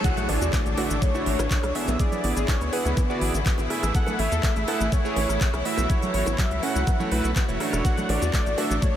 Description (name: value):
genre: progressive house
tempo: 123 BPM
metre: 4/4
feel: straight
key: unclear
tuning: A4 = 440 Hz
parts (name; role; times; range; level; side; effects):
- warm velvety synth lead; melody; 0.0-9.0 s; B4 to F#5; -30 LUFS; equal; chorus, tape echo
- clear symphonic string section; sustained chords; 0.0-9.0 s; D3 to G#4; -33 LUFS; left 2 dB; sidechain pumping
- analog pluck; arpeggios; 0.0-8.9 s; F#3 to A4; -32 LUFS; equal; chorus, cassette tape, sidechain pumping, tape echo
- electronic kick drum; drums; 0.0-8.9 s; none; -23 LUFS; equal; none
- pop drum kit; drums; 0.0-8.9 s; cabasa, handclaps, hi-hat, rim click; -32 LUFS; equal; high-pass filter on hats, high-pass filter on perc, high-pass filter on snare
- bongos and congas; percussion; 0.0-8.7 s; none; -36 LUFS; right 3 dB; none
- riser and impact; sound effects; 0.0-2.0 s; none; -35 LUFS; equal; none
- chorused polysynth; stabs; 0.3-8.8 s; A3 to F#5; -30 LUFS; right 3 dB; sidechain pumping, tape echo
- tight sequencer bass; bass; 0.3-8.8 s; E1 to E2; -26 LUFS; equal; sidechain pumping
room: moderate huge ambient reverb, RT60 7.6 s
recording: dreamy mix soaked in reverb, high-pass filter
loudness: -21 LUFS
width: side -10 dB against mid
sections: 0.0-9.0 A section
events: drop 0.0-9.0; impact 0.0-2.0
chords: 0.0 Dmaj7/A; 2.0 E7/A; 3.9 Amaj7; 5.9 F#m7/A; 7.8 Dmaj7/A